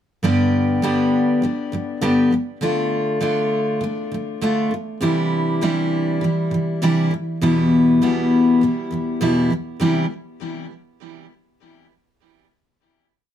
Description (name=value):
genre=pop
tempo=100 BPM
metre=4/4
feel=straight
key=C major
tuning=A4 = 438 Hz
part: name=picked steel-string acoustic guitar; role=solo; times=0.2-10.1 s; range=E2 to G4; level=-17 LUFS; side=equal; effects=ping-pong delay
room=moderate studio ambience, RT60 0.5 s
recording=none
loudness=-17 LUFS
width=side -10 dB against mid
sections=0.2-9.8 verse; 9.8-12.2 final chord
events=none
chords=0.2 G; 2.6 Dm; 5.0 Cadd9; 7.4 Em; 9.8 Cadd9